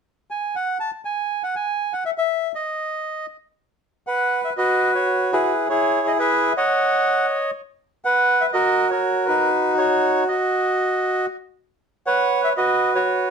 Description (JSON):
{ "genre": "tango", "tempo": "120 BPM", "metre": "4/4", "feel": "rubato", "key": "unclear", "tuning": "A4 = 438 Hz", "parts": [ { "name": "bandoneon", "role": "solo", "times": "0.3-13.3 s", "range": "D#4 to A5", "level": "-18 LUFS", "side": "right 1 dB", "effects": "slapback echo" } ], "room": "light reverb", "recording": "close, detailed microphones", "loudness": "-18 LUFS", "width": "side -6 dB against mid", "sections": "0.0-3.5 A section; 3.5-13.3 B section", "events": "none", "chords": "0.0 N.C.; 4.6 B5; 5.6 E; 6.5 C#sus24; 7.5 N.C.; 8.5 F#; 9.5 D#m7; 11.5 Bsus2" }